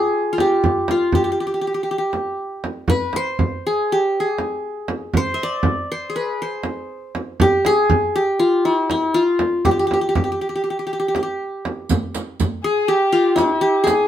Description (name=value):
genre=Turkish makam ensemble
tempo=240 BPM (eighths)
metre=9/8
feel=straight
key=G makam hicaz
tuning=A4 = 440 Hz
part: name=qanun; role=melody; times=0.0-14.1 s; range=E4-40c to E5-40c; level=-18 LUFS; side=left 1 dB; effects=none
part: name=frame drum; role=percussion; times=0.4-14.0 s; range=none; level=-21 LUFS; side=right 2 dB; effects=none
part: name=riq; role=percussion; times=11.9-14.0 s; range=none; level=-28 LUFS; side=right 6 dB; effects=none
part: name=warm kamancheh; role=second line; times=12.6-14.1 s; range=D4 to Ab4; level=-23 LUFS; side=left 4 dB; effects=none
room=light reverb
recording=minimal, uncompressed stereo recording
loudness=-17 LUFS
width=side -11 dB against mid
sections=0.0-11.9 A section; 11.9-14.1 B section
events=none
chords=none